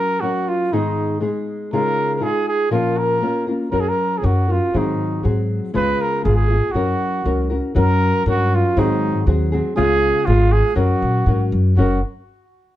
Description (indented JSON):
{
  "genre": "mexican folk, mariachi",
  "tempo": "120 BPM",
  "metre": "2/4",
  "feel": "straight",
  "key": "F# major",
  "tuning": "A4 = 442 Hz",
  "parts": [
    { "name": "mellow trumpet", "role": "melody", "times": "0.0-12.0 s", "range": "D#4 to B4", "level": "-20 LUFS", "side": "right 2 dB", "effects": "plate reverb" },
    { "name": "nylon-string guitar", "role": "accompaniment", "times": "0.0-12.0 s", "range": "G#2 to A#4", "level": "-21 LUFS", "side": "left 2 dB", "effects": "none" },
    { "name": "upright bass", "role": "bass", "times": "3.7-12.0 s", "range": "F#1 to A#2", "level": "-18 LUFS", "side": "equal", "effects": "none" }
  ],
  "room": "moderate studio ambience, RT60 0.5 s",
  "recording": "none",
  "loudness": "-16 LUFS",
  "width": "side -14 dB against mid",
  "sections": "0.0-7.8 A section; 7.8-11.8 B section",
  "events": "none",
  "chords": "0.0 F#; 0.7 G#m; 1.7 C#add9; 2.7 A#m; 3.7 F#; 4.8 G#7; 5.8 C#7; 6.8 F#; 8.8 G#7; 9.8 C#7; 10.8 F#"
}